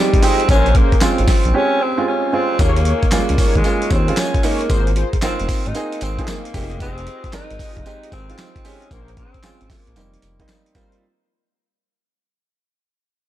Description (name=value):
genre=R&B, new jack swing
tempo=114 BPM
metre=4/4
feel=swing 66% on 16ths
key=Bb dorian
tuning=A4 = 440 Hz
part: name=growling alto saxophone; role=melody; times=0.0-10.7 s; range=G3 to Eb4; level=-22 LUFS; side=left 1 dB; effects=none
part: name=dark baby grand piano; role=accompaniment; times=0.0-11.0 s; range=G3 to Bb4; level=-22 LUFS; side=right 4 dB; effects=none
part: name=dusty soul sampler-style drum kit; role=drums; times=0.1-11.0 s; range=handclaps, hi-hat, kick drum, snare drum, tambourine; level=-18 LUFS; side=equal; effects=none
part: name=mellow synth brass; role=stabs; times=0.2-11.0 s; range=Db4 to Eb5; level=-27 LUFS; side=left 1 dB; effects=chorus
part: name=smooth synth bass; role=bass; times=0.5-10.4 s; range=F1 to Eb2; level=-20 LUFS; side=equal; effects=none
room=little or no reverb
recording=none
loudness=-14 LUFS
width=side -13 dB against mid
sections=0.0-11.0 A section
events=fade-out 0.0-11.0; break 1.5-2.6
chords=0.5 Bbm9; 2.6 Eb7sus4; 4.7 Ab69; 6.5 Fm9; 8.9 Bbm9; 10.0 F7sus4